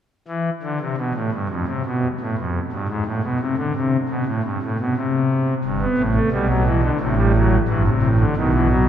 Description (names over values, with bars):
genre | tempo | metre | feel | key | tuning
classical, baroque-style 4-part fugue for pipe organ | 87 BPM | 4/4 | straight | A minor | A4 = 444 Hz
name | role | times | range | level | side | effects
pipe organ, foundations | solo | 0.3-8.9 s | G1 to B3 | -18 LUFS | equal | none
room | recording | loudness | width
wet cathedral reverb, RT60 4.8 s | none | -18 LUFS | side -10 dB against mid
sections
0.1-8.9 A section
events
none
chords
0.1 N.C.; 5.6 Em/G; 7.0 Am; 8.4 B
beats
| 0.12 0.81 1.50 2.20 | 2.89 3.58 4.26 4.95 | 5.63 6.31 7.00 7.68 | 8.36